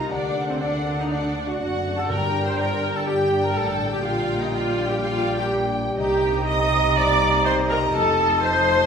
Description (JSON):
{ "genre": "classical", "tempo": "123 BPM", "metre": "4/4", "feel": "straight", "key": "G minor", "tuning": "A4 = 440 Hz", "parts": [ { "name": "warm symphonic violin section", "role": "melody", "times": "0.0-8.9 s", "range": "Eb5 to Bb5", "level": "-33 LUFS", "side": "left 2 dB", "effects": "none" }, { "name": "clear symphonic violin section", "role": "second line", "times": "0.0-8.9 s", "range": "C5 to Eb6", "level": "-32 LUFS", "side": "left 2 dB", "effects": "none" }, { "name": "dark clarinet", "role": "second line", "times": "0.0-8.9 s", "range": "D5 to Eb5", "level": "-33 LUFS", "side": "right 2 dB", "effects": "none" }, { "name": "mellow hollow concert flute", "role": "second line", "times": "0.0-8.9 s", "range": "F#5 to Bb5", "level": "-29 LUFS", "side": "equal", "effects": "none" }, { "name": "rich symphonic viola section", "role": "accompaniment", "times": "0.0-8.9 s", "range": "C4 to Eb5", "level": "-22 LUFS", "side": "equal", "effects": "none" }, { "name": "dark French horn section", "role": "sustained chords", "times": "0.0-8.9 s", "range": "G3 to Eb4", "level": "-32 LUFS", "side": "left 1 dB", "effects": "none" }, { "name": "concert harp", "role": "arpeggios", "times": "0.0-8.9 s", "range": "F2 to G4", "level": "-29 LUFS", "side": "left 3 dB", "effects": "none" }, { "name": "rich symphonic double bass section", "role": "bass", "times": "0.0-8.9 s", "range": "F1 to D2", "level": "-31 LUFS", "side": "right 2 dB", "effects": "none" }, { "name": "warm chamber cello section", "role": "bass", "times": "0.0-8.9 s", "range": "F2 to D3", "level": "-30 LUFS", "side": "right 2 dB", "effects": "none" }, { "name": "timpani", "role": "percussion", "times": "2.1-2.8 s", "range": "G2", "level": "-33 LUFS", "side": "right 1 dB", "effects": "none" } ], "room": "wet recital hall reverb, RT60 1.5 s", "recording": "recorded in a church or concert hall", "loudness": "-19 LUFS", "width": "side -6 dB against mid", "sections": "0.0-8.9 A section", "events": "none", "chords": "0.1 D7; 2.1 Gm; 4.0 Gm/Bb; 6.0 Cm7; 7.9 F7" }